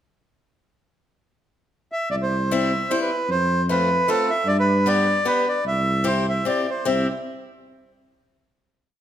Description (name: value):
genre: alpine folk, alpine dance band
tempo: 152 BPM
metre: 3/4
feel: swing 55% on 8ths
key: C major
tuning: A4 = 443 Hz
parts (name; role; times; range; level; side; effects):
- accordion; melody; 1.9-7.1 s; A4 to E5; -21 LUFS; right 1 dB; none
- mellow tuba; bass; 2.1-7.1 s; C2 to G2; -24 LUFS; equal; none
- picked swing-style acoustic guitar; accompaniment; 2.5-7.1 s; G3 to G4; -26 LUFS; left 4 dB; none
room: wet recital hall reverb, RT60 1.7 s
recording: none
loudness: -19 LUFS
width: side -10 dB against mid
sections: 0.9-2.1 pickup bar; 2.1-6.9 A section; 6.9-8.1 final chord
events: none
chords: 0.9 N.C.; 2.1 C; 3.3 F; 4.5 G; 5.7 C